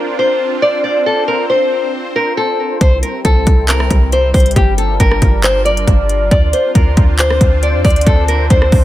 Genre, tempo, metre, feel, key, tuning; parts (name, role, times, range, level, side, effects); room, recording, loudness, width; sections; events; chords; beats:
hip hop, trap; 137 BPM; 4/4; half-time; A4 = 440 Hz
nylon-string guitar; melody; 0.0-8.8 s; G4 to D5; -15 LUFS; left 1 dB; low-pass filter, digital delay
sweeping resonant pad; sustained chords; 0.0-8.8 s; G3 to C5; -22 LUFS; equal; chorus
clean 808-style bass; bass; 2.8-8.8 s; G1 to F2; -14 LUFS; equal
trap drum kit; drums; 2.8-8.8 s; handclaps, hi-hat, kick drum, rim click; -12 LUFS; equal
little or no reverb; -10 LUFS; side -14 dB against mid
0.0-8.8 A section
0.0 Dm7; 2.8 C; 4.6 Gm7; 6.3 Dm7
0.18 0.62 | 1.06 1.50 1.93 2.37 | 2.81 3.25 3.69 4.12 | 4.56 5.00 5.44 5.88 | 6.31 6.75 7.19 7.63 | 8.06 8.50